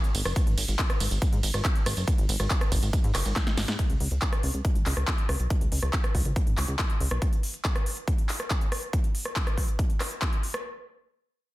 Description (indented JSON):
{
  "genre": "uplifting trance",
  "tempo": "140 BPM",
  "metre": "4/4",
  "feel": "straight",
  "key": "unclear",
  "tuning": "A4 = 436 Hz",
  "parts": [
    { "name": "big-room dance drum kit", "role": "drums", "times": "0.0-10.6 s", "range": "handclaps, hi-hat, ride cymbal, rim click, snare drum, tambourine", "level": "-31 LUFS", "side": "equal", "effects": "sidechain pumping on hats, sidechain pumping on perc, sidechain pumping on cymbals" },
    { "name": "plucky analog bass", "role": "bass", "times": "0.1-7.2 s", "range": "F#1 to G#2", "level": "-28 LUFS", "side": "equal", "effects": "sidechain pumping" },
    { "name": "electronic kick drum", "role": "drums", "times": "0.4-10.3 s", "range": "none", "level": "-26 LUFS", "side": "equal", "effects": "none" }
  ],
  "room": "little or no reverb",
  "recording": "dense, heavily limited modern master",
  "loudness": "-24 LUFS",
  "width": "side -17 dB against mid",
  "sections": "0.0-3.8 A section; 3.8-10.6 B section",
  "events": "drop 0.0-3.8; drum fill 3.4-3.8",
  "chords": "none",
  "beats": "| 0.36 0.79 1.22 1.65 | 2.08 2.50 2.93 3.36 | 3.79 4.22 4.65 5.08 | 5.50 5.93 6.36 6.79 | 7.22 7.65 8.07 8.50 | 8.93 9.36 9.79 10.22"
}